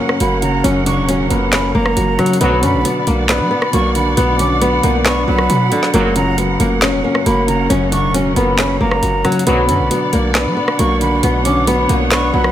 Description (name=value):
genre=hip hop, trap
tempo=136 BPM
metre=4/4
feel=half-time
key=B harmonic minor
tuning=A4 = 439 Hz
part: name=flamenco guitar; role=melody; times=0.0-12.5 s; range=D3 to D4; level=-17 LUFS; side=left 2 dB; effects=ping-pong delay
part: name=felt-muted upright piano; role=accompaniment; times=0.0-12.5 s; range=F#2 to D4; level=-19 LUFS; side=equal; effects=none
part: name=warm symphonic string section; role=sustained chords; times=0.0-12.5 s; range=C#4 to F#5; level=-23 LUFS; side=right 2 dB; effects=none
part: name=trap drum kit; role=drums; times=0.1-12.5 s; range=handclaps, hi-hat, rim click, snare drum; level=-20 LUFS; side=equal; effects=none
part: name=breathy concert flute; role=second line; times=0.2-12.5 s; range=A#5 to D6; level=-22 LUFS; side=right 2 dB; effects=ping-pong delay
part: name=hard-hitting 808-style bass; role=bass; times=0.2-12.5 s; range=E1 to F#3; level=-19 LUFS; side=equal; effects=none
part: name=warm brass ensemble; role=stabs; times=2.4-2.8, 5.9-6.4, 9.5-9.9 s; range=C#2 to F#3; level=-21 LUFS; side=right 1 dB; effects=none
room=moderate recital hall reverb, RT60 1.6 s, studio reverb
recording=none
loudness=-12 LUFS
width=side -11 dB against mid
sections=0.0-9.5 A section; 9.5-12.5 A section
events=none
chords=0.0 F#; 2.4 Bm; 5.9 F#; 9.5 Bm